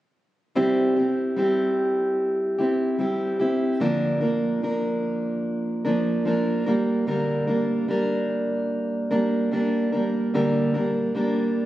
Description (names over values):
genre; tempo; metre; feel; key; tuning
pop; 74 BPM; 4/4; straight; C mixolydian; A4 = 438 Hz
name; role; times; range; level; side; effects
fingerpicked plugged-in steel-string acoustic guitar; accompaniment; 0.6-11.7 s; Bb2 to Bb4; -21 LUFS; equal; none
room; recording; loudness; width
moderate concert hall reverb, RT60 2.1 s; recorded on a phone in the room, studio ambience; -21 LUFS; side -14 dB against mid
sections
0.6-11.7 A section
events
none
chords
0.6 C; 3.8 Bb; 6.7 Gm/Bb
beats
| 0.56 1.37 2.19 3.00 | 3.82 4.63 5.45 6.26 | 7.08 7.89 8.71 9.53 | 10.34 11.16